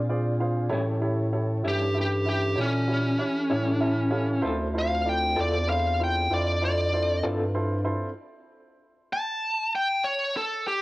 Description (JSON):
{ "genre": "slow blues", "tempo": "64 BPM (dotted quarters)", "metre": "12/8", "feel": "straight", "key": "D minor", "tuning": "A4 = 441 Hz", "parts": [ { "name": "mellow tonewheel organ", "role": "sustained chords", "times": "0.0-8.1 s", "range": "E3 to Bb4", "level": "-35 LUFS", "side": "equal", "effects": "slow rotary speaker" }, { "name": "breathy bass clarinet", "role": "bass", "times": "0.0-8.1 s", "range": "D2 to Bb2", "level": "-27 LUFS", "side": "equal", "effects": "none" }, { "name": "warm upright piano", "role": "accompaniment", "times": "0.1-8.1 s", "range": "E4 to A5", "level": "-32 LUFS", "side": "right 1 dB", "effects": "none" }, { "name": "electric guitar through a small old amp", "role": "accompaniment", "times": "0.7-7.4 s", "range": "A2 to A4", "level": "-34 LUFS", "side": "left 1 dB", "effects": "tremolo" }, { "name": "smooth overdriven lead guitar", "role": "melody", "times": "1.7-10.8 s", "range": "C#4 to A5", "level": "-25 LUFS", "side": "equal", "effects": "none" } ], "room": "light reverb, studio reverb", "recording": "worn, warbling old tape, cassette tape, warbly pitch drift", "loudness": "-23 LUFS", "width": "side -19 dB against mid", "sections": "0.0-10.8 A section", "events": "lead electric guitar solo 0.0-10.8; upright piano fill 3.5-4.4; stop 8.2-10.8", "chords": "0.0 Bb7; 0.7 A7; 4.4 Dm7; 8.2 N.C." }